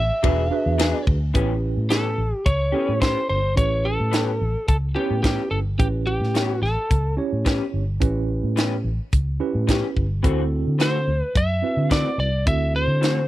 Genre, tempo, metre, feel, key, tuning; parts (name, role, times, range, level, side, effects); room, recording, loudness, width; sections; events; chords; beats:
straight-eighth soul blues; 108 BPM; 4/4; straight; A mixolydian; A4 = 440 Hz
lightly driven lead guitar; melody; 0.0-7.1, 10.8-13.3 s; G4 to E5; -24 LUFS; equal
vintage muted fingered electric bass; bass; 0.0-13.3 s; E1 to D3; -23 LUFS; equal
tine electric piano; accompaniment; 0.2-13.3 s; C4 to C#5; -27 LUFS; right 5 dB; medium stereo tremolo
electric guitar through a small old amp; stabs; 0.2-13.2 s; E3 to G#4; -28 LUFS; left 7 dB; lush chorus
tight funk drum kit; drums; 0.2-13.2 s; hi-hat, kick drum, ride cymbal, snare drum; -21 LUFS; equal
small room ambience; dry, close 1970s-style studio recording, faint mains hum; -19 LUFS; side -15 dB against mid
0.0-1.3 A section; 1.3-13.3 B section
lead electric guitar solo 0.0-1.3
0.2 E9; 1.3 A9; 10.2 D9
0.24 0.79 | 1.35 1.90 2.46 3.01 | 3.57 4.12 4.68 5.24 | 5.79 6.35 6.90 7.46 | 8.01 8.57 9.12 9.68 | 10.24 10.79 11.35 11.90 | 12.46 13.02